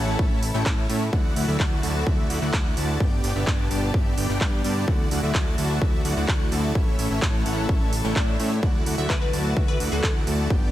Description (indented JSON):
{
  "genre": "EDM, festival progressive house",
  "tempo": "128 BPM",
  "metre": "4/4",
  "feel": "straight",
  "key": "D major",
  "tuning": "A4 = 439 Hz",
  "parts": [
    { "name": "dark studio string section", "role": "sustained chords", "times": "0.0-10.7 s", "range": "B2 to A4", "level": "-32 LUFS", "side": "left 1 dB", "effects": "sidechain pumping" },
    { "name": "dense compressed supersaw", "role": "riff", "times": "0.0-10.7 s", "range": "A3 to A5", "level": "-28 LUFS", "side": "equal", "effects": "sidechain pumping, digital delay" },
    { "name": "fat analog bass", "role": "bass", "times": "0.0-10.7 s", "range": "G1 to A2", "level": "-27 LUFS", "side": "equal", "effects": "sidechain pumping" },
    { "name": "electronic kick drum", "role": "drums", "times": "0.2-10.6 s", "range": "none", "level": "-23 LUFS", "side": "equal", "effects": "none" },
    { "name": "big-room dance drum kit", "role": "drums", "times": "0.4-10.4 s", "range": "handclaps, hi-hat", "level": "-31 LUFS", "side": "right 1 dB", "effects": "overdrive" },
    { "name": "swell", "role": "sound effects", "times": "7.8-8.6 s", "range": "none", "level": "-37 LUFS", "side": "left 1 dB", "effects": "none" },
    { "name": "glassy wavetable pluck", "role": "melody", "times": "9.0-10.1 s", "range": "A4 to E5", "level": "-31 LUFS", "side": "left 2 dB", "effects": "chorus, digital delay" }
  ],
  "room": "little or no reverb",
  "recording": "none",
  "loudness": "-20 LUFS",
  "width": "side -13 dB against mid",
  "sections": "0.0-10.7 A section",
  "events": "swell 7.8-8.6",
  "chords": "0.0 A; 1.1 Dadd9; 3.0 G; 4.9 Dadd9; 6.8 A; 8.6 Dadd9"
}